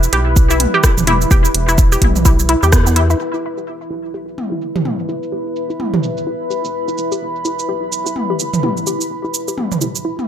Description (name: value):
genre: minimal techno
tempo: 127 BPM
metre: 4/4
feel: swing 60% on 16ths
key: unclear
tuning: A4 = 439 Hz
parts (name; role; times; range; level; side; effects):
- rubbery square bass; bass; 0.0-10.1 s; E1 to E2; -19 LUFS; equal; sidechain pumping, high-pass filter
- house drum kit; drums; 0.0-10.0 s; cabasa, hi-hat, rim click; -20 LUFS; right 3 dB; low-pass filter on perc, low-pass filter on hats, low-pass filter on snare
- deep dark ambient pad; texture; 0.0-10.3 s; E4 to B5; -22 LUFS; equal; chorus, built-in reverb, sidechain pumping
- resonant blip pluck; riff; 0.1-10.1 s; B3 to G4; -20 LUFS; left 1 dB; chorus, sidechain pumping, tape echo
- electronic kick drum; drums; 0.4-2.8 s; none; -12 LUFS; equal; none
- electronic toms; percussion; 0.6-10.3 s; none; -20 LUFS; right 1 dB; analog delay
room: light reverb, digital ambience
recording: echo-heavy mix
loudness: -14 LUFS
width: side -10 dB against mid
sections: 0.0-3.2 A section; 3.2-10.3 B section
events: drop 0.0-3.2; band accent 2.7; filter sweep on drum 3.2-10.3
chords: 0.0 E5